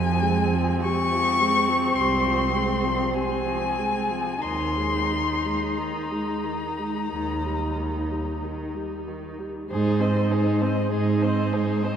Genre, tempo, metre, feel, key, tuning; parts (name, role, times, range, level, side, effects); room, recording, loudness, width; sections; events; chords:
classical, slow romantic movement for string quartet; 44-54 BPM; 4/4; rubato; Ab major; A4 = 440 Hz
muted violin; melody; 0.0-12.0 s; C5 to Db6; -26 LUFS; left 4 dB
muted violin; second line; 0.0-12.0 s; C4 to C5; -29 LUFS; left 1 dB
muted viola; accompaniment; 0.0-12.0 s; C3 to Eb4; -29 LUFS; right 2 dB
muted cello; bass; 0.0-12.0 s; C2 to Ab2; -27 LUFS; right 2 dB
wet cathedral reverb, RT60 4.3 s; -22 LUFS; side -8 dB against mid
0.0-9.7 A section; 9.7-12.0 B section
0.0 Fm; 4.4 Ebsus4; 7.1 Eb; 9.7 Ab